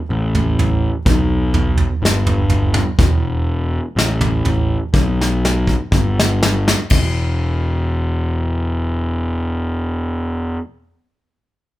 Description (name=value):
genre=stoner and doom metal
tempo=61 BPM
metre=4/4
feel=straight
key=E minor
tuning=A4 = 440 Hz
part: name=fuzz picked electric bass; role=bass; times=0.1-10.6 s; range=E1 to B1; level=-18 LUFS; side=left 1 dB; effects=overdrive, tube saturation
part: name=soft brush drum kit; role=drums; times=0.3-7.1 s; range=crash cymbal, kick drum, snare drum, toms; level=-17 LUFS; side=right 1 dB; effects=none
room=light reverb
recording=band playing live in one room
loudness=-15 LUFS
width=side -15 dB against mid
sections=0.0-6.9 A section; 6.9-10.9 B section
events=slowing down 0.0-6.9; drum fill 4.9-6.9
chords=none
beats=0.10 1.06 2.02 | 2.98 3.96 4.93 5.92 | 6.91 7.91 8.91 9.91